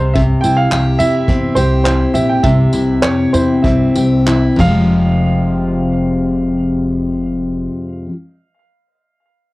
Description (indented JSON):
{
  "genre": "acoustic pop",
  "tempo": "91-108 BPM",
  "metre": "4/4",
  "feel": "swing 55% on 16ths",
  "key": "F minor",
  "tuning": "A4 = 440 Hz",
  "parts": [
    { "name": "dark upright piano", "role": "melody", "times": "0.0-7.7 s", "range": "C5 to G5", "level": "-19 LUFS", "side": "right 2 dB", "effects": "cassette tape, tape echo" },
    { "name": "picked steel-string acoustic guitar", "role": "accompaniment", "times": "0.0-8.2 s", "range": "F2 to G4", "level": "-14 LUFS", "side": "left 1 dB", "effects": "cassette tape" },
    { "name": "upright bass", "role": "bass", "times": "0.0-7.7 s", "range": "F1 to F2", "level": "-17 LUFS", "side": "equal", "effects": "none" },
    { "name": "vintage brush drum kit", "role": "drums", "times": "0.2-4.8 s", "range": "crash cymbal, handclaps, kick drum, tambourine", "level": "-20 LUFS", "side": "right 1 dB", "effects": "cassette tape" }
  ],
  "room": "light reverb",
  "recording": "home recording on cassette",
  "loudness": "-12 LUFS",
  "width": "side -20 dB against mid",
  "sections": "0.0-4.9 A section; 4.9-7.5 B section",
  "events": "slowing down 0.2-4.9",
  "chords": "0.0 C; 4.6 Fmadd9"
}